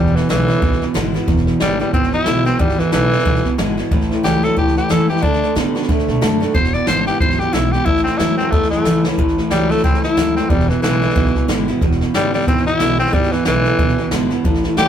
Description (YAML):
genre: rockabilly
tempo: 182 BPM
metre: 4/4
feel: swing 58% on 8ths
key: unclear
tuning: A4 = 440 Hz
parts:
  - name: breathy tenor saxophone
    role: melody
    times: 0.0-14.9 s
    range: E3 to D5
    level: -18 LUFS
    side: left 1 dB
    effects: none
  - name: picked steel-string acoustic guitar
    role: accompaniment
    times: 0.0-14.9 s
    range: E2 to F#4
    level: -23 LUFS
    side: left 1 dB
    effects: none
  - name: electric guitar through a small old amp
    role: riff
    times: 0.0-14.9 s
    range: E2 to B3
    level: -19 LUFS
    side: right 2 dB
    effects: none
  - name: upright bass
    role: bass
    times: 0.0-14.9 s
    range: E1 to B2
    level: -22 LUFS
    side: equal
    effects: none
  - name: jazz brush drum kit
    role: drums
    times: 0.1-14.9 s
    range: hi-hat, kick drum, snare drum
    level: -20 LUFS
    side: equal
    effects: none
room: light reverb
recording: rough rehearsal-room recording, tube saturation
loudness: -14 LUFS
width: side -9 dB against mid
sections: 0.0-9.2 A section; 9.2-14.9 A section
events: drum fill 8.9-9.2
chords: 0.0 E7; 3.9 A; 5.2 D; 6.5 E7; 7.9 A; 10.5 E7